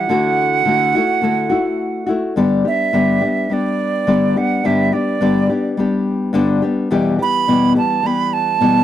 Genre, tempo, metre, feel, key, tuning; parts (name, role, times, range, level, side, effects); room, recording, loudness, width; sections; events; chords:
pop; 106 BPM; 4/4; swing 55% on 16ths; G major; A4 = 440 Hz
bright silver concert flute; melody; 0.0-8.8 s; D5 to B5; -18 LUFS; right 7 dB
nylon-string guitar; accompaniment; 0.0-8.8 s; E2 to G4; -16 LUFS; left 2 dB
little or no reverb; dry, close 1970s-style studio recording; -14 LUFS; side -11 dB against mid
0.0-2.4 A section; 2.4-8.8 B section
0.1 Dadd9; 2.4 G; 6.9 Em